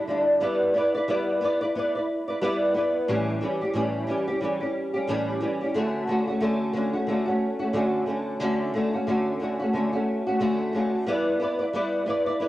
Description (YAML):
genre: indie pop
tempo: 90 BPM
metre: 4/4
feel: swing 60% on 16ths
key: D major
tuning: A4 = 440 Hz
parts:
  - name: flamenco guitar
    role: solo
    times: 0.0-12.5 s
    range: A2 to D5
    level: -23 LUFS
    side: equal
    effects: ensemble chorus, warbly pitch drift, cassette tape
room: moderate lush hall reverb, RT60 2.5 s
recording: home recording on cassette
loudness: -23 LUFS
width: side -15 dB against mid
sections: 0.4-12.5 A section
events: none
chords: 0.4 G6; 3.1 A7; 5.8 Dmaj7; 11.1 G6